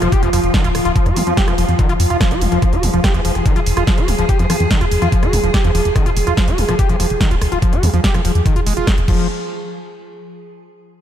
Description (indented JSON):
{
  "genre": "psychedelic trance",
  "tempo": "144 BPM",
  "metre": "4/4",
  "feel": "straight",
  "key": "unclear",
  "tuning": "A4 = 441 Hz",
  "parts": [
    { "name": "evolving wavetable pad", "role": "sustained chords", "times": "0.0-9.1 s", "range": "F3 to Ab4", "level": "-22 LUFS", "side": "equal", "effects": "chorus, built-in reverb, sidechain pumping" },
    { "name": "screaming distorted acid line", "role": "riff", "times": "0.0-9.3 s", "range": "Eb3 to G4", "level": "-21 LUFS", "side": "moving between left 3 dB and right 3 dB", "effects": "distortion, chorus, auto-pan, sidechain pumping, analog delay" },
    { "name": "plucky analog bass", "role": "bass", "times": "0.0-9.3 s", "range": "Eb1 to F2", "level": "-18 LUFS", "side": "equal", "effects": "tube saturation" },
    { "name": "techno drum kit", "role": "drums", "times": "0.0-9.2 s", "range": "crash cymbal, hi-hat, rim click, snare drum", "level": "-23 LUFS", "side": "equal", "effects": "none" },
    { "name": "electronic kick drum", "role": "drums", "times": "0.1-9.2 s", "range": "none", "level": "-16 LUFS", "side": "equal", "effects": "none" }
  ],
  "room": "light reverb, digital ambience",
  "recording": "none",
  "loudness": "-13 LUFS",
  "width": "side -10 dB against mid",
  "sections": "0.0-9.3 A section; 9.3-11.0 B section",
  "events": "filter sweep on analog synth bass 0.0-9.3",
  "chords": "0.0 Ebsus24; 9.1 N.C.",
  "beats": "0.12 0.54 | 0.96 1.37 1.79 2.21 | 2.62 3.04 3.46 3.87 | 4.29 4.71 5.12 5.54 | 5.96 6.37 6.79 7.21 | 7.62 8.04 8.46 8.87"
}